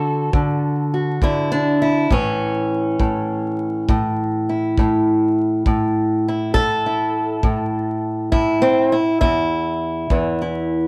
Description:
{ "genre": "acoustic country blues, solo or duo", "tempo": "68 BPM (dotted quarters)", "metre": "12/8", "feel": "straight", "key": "A major", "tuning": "A4 = 438 Hz", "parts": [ { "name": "fingerpicked old ladder-braced acoustic guitar", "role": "melody", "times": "0.0-10.9 s", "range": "E2 to A4", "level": "-20 LUFS", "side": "equal", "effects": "none" }, { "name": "kick drum", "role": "drums", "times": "0.3-10.2 s", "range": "none", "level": "-23 LUFS", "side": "equal", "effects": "none" } ], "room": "moderate studio reverb, RT60 0.8 s", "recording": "vinyl crackle", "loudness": "-19 LUFS", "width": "mono", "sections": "0.0-10.9 A section", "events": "none", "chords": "0.0 D; 2.1 A; 9.2 N.C." }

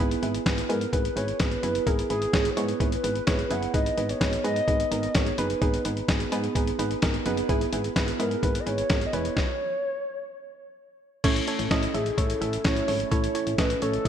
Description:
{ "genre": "synth-pop", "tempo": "128 BPM", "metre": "4/4", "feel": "straight", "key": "unclear", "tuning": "A4 = 440 Hz", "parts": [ { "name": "soft round pluck", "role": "accompaniment", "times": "0.0-14.1 s", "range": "B3 to E5", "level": "-29 LUFS", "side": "right 3 dB", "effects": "chorus" }, { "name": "solid FM bass", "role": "bass", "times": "0.0-14.1 s", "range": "E1 to G#2", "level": "-31 LUFS", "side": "left 1 dB", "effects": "none" }, { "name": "lo-fi sampler-style drum kit", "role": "drums", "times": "0.1-14.1 s", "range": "crash cymbal, hi-hat, kick drum, snare drum", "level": "-27 LUFS", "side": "left 1 dB", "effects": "gated reverb" }, { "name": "hollow clarinet-like synth lead", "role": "melody", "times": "0.7-14.1 s", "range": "G#4 to F#5", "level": "-30 LUFS", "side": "equal", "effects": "chorus, ping-pong delay" }, { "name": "chorused pulse-width pad", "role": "sustained chords", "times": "11.2-14.1 s", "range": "A3 to E4", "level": "-34 LUFS", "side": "right 2 dB", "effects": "none" } ], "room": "moderate lush hall reverb, RT60 1.8 s, digital ambience", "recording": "bright 1980s-style digital production", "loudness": "-23 LUFS", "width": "side -9 dB against mid", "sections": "0.0-11.2 A section; 11.2-14.1 B section", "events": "stop 9.4-11.2", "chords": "0.0 E; 3.7 G#madd9; 7.5 E/G#; 9.4 N.C.; 11.2 A" }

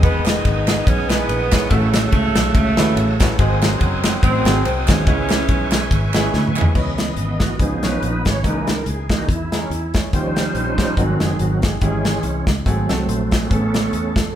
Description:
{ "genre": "uptempo gospel", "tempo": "142 BPM", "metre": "4/4", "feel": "swing 56% on 8ths", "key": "C# minor, C# harmonic minor from 6.8 s", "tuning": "A4 = 438 Hz", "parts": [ { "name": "bright saxophone section", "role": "melody", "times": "0.0-6.3 s", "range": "C#3 to D#4", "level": "-21 LUFS", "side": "right 1 dB", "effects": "none" }, { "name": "clear baby grand piano", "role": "accompaniment", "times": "0.0-14.1 s", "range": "G#2 to C#5", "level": "-27 LUFS", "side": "equal", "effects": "none" }, { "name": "bright tonewheel organ", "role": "sustained chords", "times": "0.0-14.4 s", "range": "D#3 to E6", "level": "-24 LUFS", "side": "right 1 dB", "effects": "slow rotary speaker, chorus vibrato" }, { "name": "fingered electric bass", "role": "bass", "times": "0.0-14.3 s", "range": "E1 to E2", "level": "-22 LUFS", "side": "equal", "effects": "none" }, { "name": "modern studio drum kit", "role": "drums", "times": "0.0-14.3 s", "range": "crash cymbal, hi-hat, kick drum, ride cymbal, snare drum, toms", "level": "-19 LUFS", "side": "equal", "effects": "none" }, { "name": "group handclap", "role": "percussion", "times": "0.3-6.7 s", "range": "none", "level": "-31 LUFS", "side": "right 4 dB", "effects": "none" } ], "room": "wet large studio reverb, RT60 1.3 s", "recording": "band playing live in one room", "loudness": "-16 LUFS", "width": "side -10 dB against mid", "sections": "0.0-6.8 A section; 6.8-14.4 B section", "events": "drum fill 6.3-6.8; tonewheel organ solo 6.8-14.4", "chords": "0.0 Emaj7; 1.7 A6; 3.4 G#7; 5.1 C#m7; 6.8 C#m9; 7.6 C#7; 8.4 C#m13; 10.1 D#13; 11.0 G#7; 11.8 C#m/G#; 12.7 G#7b9; 13.5 Amaj9" }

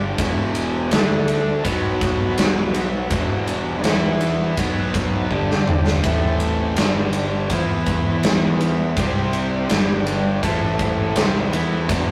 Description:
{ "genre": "blues rock power trio and southern rock", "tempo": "82 BPM", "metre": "4/4", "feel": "straight", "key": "E minor", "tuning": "A4 = 440 Hz", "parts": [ { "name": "bright tonewheel organ", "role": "sustained chords", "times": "0.0-12.1 s", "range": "E3 to D5", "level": "-32 LUFS", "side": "equal", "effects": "none" }, { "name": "cranked stack guitar", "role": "riff", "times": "0.0-12.1 s", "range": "E2 to E4", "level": "-26 LUFS", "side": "equal", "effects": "overdrive" }, { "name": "fuzz fingered electric bass", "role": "bass", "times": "0.0-12.1 s", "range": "E1 to E2", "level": "-27 LUFS", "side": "equal", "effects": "overdrive" }, { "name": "huge arena drum kit", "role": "drums", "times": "0.2-12.1 s", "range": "kick drum, ride cymbal, snare drum, toms", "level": "-23 LUFS", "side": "equal", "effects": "none" } ], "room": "moderate studio reverb, RT60 0.6 s", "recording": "rough rehearsal-room recording, tube saturation", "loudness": "-20 LUFS", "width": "mono", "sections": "0.0-12.1 A section", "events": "drum fill 5.3-6.0", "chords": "0.2 Em9; 0.9 D5; 1.6 B5; 3.1 Em9; 4.6 B5; 5.3 G5; 6.0 Am9; 6.8 G5; 7.5 E5; 9.0 C5; 9.7 G5; 10.4 Am9" }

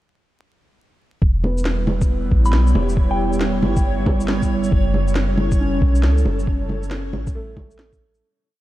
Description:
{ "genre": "future garage", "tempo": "137 BPM", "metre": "4/4", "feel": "swing 64% on 16ths", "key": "E dorian", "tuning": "A4 = 442 Hz", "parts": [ { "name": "airy breathy pad", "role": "sustained chords", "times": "1.6-8.2 s", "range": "G3 to C#5", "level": "-24 LUFS", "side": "right 2 dB", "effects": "chorus, phaser, sidechain pumping" }, { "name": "soft 808-style bass", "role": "bass", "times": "1.2-8.2 s", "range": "E1 to C#2", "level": "-20 LUFS", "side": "equal", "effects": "tube saturation, sidechain pumping" }, { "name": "electronic kick drum", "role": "drums", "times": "1.2-8.0 s", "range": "none", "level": "-18 LUFS", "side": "equal", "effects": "none" }, { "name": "backwards swelling texture", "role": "texture", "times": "2.4-8.2 s", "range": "C#5", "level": "-34 LUFS", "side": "left 3 dB", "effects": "built-in reverb, wide subtle chorus" }, { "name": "felt-muted upright piano", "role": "accompaniment", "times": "1.4-8.2 s", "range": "A3 to C#4", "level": "-31 LUFS", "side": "left 1 dB", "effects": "sidechain pumping, low-pass filter, diffuse ambient delay" }, { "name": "electronic bongos, shaker and snare drum", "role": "drums", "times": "1.4-8.2 s", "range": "none", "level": "-26 LUFS", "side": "right 1 dB", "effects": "none" }, { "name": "soft synth bell", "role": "melody", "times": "2.5-3.5 s", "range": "G5 to B5", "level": "-30 LUFS", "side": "equal", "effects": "chorus, phaser, tape echo" } ], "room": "moderate cathedral reverb, RT60 5.4 s", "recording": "dreamy mix soaked in reverb, vinyl crackle", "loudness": "-16 LUFS", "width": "side -15 dB against mid", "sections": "1.2-8.2 groove", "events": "filter sweep on felt piano 1.2-8.2; fade-out 5.9-8.2", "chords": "1.2 Em6; 4.7 F#m7" }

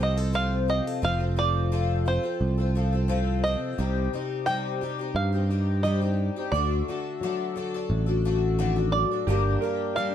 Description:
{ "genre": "folk", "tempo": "87 BPM", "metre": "4/4", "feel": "straight", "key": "unclear", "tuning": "A4 = 438 Hz", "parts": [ { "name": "bluegrass banjo", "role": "melody", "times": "0.0-10.1 s", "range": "C5 to G5", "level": "-29 LUFS", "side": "right 3 dB", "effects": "none" }, { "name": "fingerpicked plugged-in steel-string acoustic guitar", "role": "accompaniment", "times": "0.0-10.1 s", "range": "G2 to Bb4", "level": "-32 LUFS", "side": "left 2 dB", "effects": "none" }, { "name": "picked twelve-string acoustic guitar", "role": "accompaniment", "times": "0.0-10.1 s", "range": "G2 to A4", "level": "-31 LUFS", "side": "left 7 dB", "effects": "lush chorus" }, { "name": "picked electric bass", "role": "bass", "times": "0.0-9.6 s", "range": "F1 to G2", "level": "-25 LUFS", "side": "right 1 dB", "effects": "none" }, { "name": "clear upright piano", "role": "arpeggios", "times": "9.3-10.1 s", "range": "G4 to D5", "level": "-29 LUFS", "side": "right 3 dB", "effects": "none" } ], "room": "light reverb", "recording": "dark, warm production", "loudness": "-23 LUFS", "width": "side -10 dB against mid", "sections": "0.0-3.8 A section; 3.8-10.1 B section", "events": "none", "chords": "0.0 F; 3.8 Cm; 6.5 D; 9.3 Gm" }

